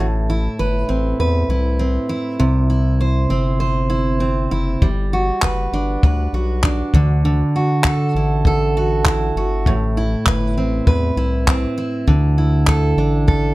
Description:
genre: acoustic pop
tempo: 99 BPM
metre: 4/4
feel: straight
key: unclear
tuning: A4 = 440 Hz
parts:
  - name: picked steel-string acoustic guitar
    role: accompaniment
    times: 0.0-13.5 s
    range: A2 to C5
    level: -18 LUFS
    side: right 1 dB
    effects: none
  - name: round analog bass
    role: bass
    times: 0.0-13.5 s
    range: F#1 to E2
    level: -20 LUFS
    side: left 1 dB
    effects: none
  - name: compact cocktail drum kit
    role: drums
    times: 4.8-13.4 s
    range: handclaps, kick drum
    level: -16 LUFS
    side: left 1 dB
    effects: none
room: light reverb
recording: none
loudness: -15 LUFS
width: side -18 dB against mid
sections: 0.0-13.5 A section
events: none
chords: 0.0 Amadd9; 2.4 C; 4.8 Gmaj7; 6.9 Dadd9; 9.7 Amadd9; 12.1 Dsus2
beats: 0.59 1.19 1.80 | 2.40 3.01 3.61 4.22 | 4.82 5.43 6.03 6.64 | 7.24 7.85 8.45 9.05 | 9.66 10.26 10.87 11.47 | 12.07 12.68 13.28

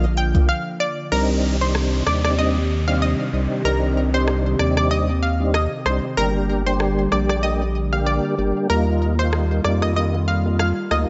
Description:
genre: dancehall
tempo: 95 BPM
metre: 4/4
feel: swing 56% on 16ths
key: C minor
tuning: A4 = 440 Hz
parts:
  - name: tonewheel organ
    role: accompaniment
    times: 0.0-11.1 s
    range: F3 to G4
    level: -27 LUFS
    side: equal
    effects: chorus vibrato, slow rotary speaker
  - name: hollow soft pad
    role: sustained chords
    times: 0.0-11.1 s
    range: C3 to G4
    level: -28 LUFS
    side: equal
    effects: chorus, sidechain pumping
  - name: saturated sub bass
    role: bass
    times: 0.0-11.1 s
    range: G1 to F2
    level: -24 LUFS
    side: equal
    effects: none
  - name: island pop drum kit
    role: drums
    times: 0.0-11.1 s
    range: hi-hat, kick drum, rim click, shaker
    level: -27 LUFS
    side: equal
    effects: vintage 12-bit sampler grit
  - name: analog pluck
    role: melody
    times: 0.2-11.1 s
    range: Bb4 to G5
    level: -27 LUFS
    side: equal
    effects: chorus, delay
  - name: downlifter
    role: sound effects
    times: 1.1-6.2 s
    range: none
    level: -37 LUFS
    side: equal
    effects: none
room: moderate lush hall reverb, RT60 2.1 s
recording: dreamy mix soaked in reverb, nothing above 7.8 kHz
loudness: -20 LUFS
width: mono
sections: 0.0-1.1 A section; 1.1-11.1 B section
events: break 0.5-1.1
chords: 0.0 Bb; 1.1 Cmadd9; 6.2 Gm; 8.7 Ebadd9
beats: 0.49 | 1.12 1.75 2.38 3.02 | 3.65 4.28 4.91 5.54 | 6.17 6.80 7.44 8.07 | 8.70 9.33 9.96 10.59

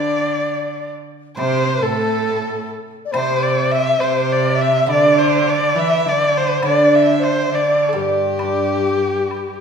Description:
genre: chinese traditional, Chinese chamber ensemble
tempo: 68 BPM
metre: 4/4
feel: rubato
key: unclear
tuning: A4 = 440 Hz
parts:
  - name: warm erhu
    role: melody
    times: 0.0-9.6 s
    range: G4 to E5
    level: -21 LUFS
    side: equal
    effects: none
  - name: bright cello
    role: second line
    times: 0.0-9.6 s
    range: G2 to E3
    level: -23 LUFS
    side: right 6 dB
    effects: none
  - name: reedy large dizi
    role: second line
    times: 0.0-9.6 s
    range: G4 to E5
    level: -19 LUFS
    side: left 3 dB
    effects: none
  - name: guzheng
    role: accompaniment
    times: 0.0-9.6 s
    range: C3 to D4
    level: -21 LUFS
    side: right 2 dB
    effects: none
  - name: woodblock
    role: percussion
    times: 1.4-9.5 s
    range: none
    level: -32 LUFS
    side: left 2 dB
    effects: none
room: wet recital hall reverb, RT60 1.5 s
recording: recorded in a church or concert hall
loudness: -15 LUFS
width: side -6 dB against mid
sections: 0.0-9.6 A section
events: none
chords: none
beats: 0.51 1.39 2.27 | 3.14 4.01 4.88 5.75 | 6.63 7.51 8.40 9.31

